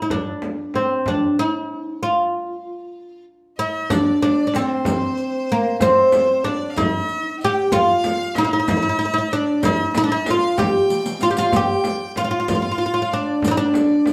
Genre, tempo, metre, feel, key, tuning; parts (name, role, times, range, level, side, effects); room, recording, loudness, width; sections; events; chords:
Arabic maqam ensemble; 63 BPM (dotted quarters); 6/8; straight; F maqam rast; A4 = 441 Hz
oud; melody; 0.0-14.1 s; Bb3 to G4; -21 LUFS; equal
frame drum; percussion; 0.1-14.1 s; -28 LUFS; equal
clear violin; second line; 3.6-14.1 s; C5 to G5; -30 LUFS; equal
riq; percussion; 3.9-14.1 s; -34 LUFS; equal
wet large studio reverb, RT60 0.9 s; band playing live in one room; -20 LUFS; mono
0.0-3.9 A section; 3.9-14.1 B section
break 2.0-3.9; drum fill 10.9-11.5